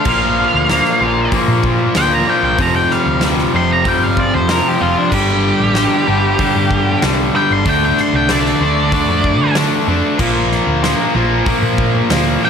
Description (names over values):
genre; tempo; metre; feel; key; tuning
quiet-loud alternative rock; 95 BPM; 4/4; straight; unclear; A4 = 437 Hz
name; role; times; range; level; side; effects
octave-fuzz lead guitar; melody; 0.0-12.5 s; D4 to C6; -17 LUFS; right 1 dB; distortion, tape echo
twangy electric guitar; arpeggios; 0.0-5.1 s; Bb2 to F4; -23 LUFS; left 7 dB; tape echo
overdriven electric guitar; riff; 0.0-12.5 s; F2 to D4; -18 LUFS; left 11 dB; none
thick fuzz guitar; riff; 0.0-12.5 s; F2 to D4; -18 LUFS; right 11 dB; distortion
hollow-body short-scale picked electric bass; bass; 0.1-12.4 s; F1 to D3; -19 LUFS; equal; none
huge arena drum kit; drums; 0.1-12.3 s; crash cymbal, hi-hat, kick drum, snare drum; -21 LUFS; equal; none
room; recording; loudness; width
little or no reverb; none; -12 LUFS; side -7 dB against mid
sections
0.0-12.5 A section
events
lead electric guitar solo 0.0-12.5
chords
0.1 Bbadd9; 2.6 Fsus2; 5.1 G5; 7.7 Dm7; 10.2 Bb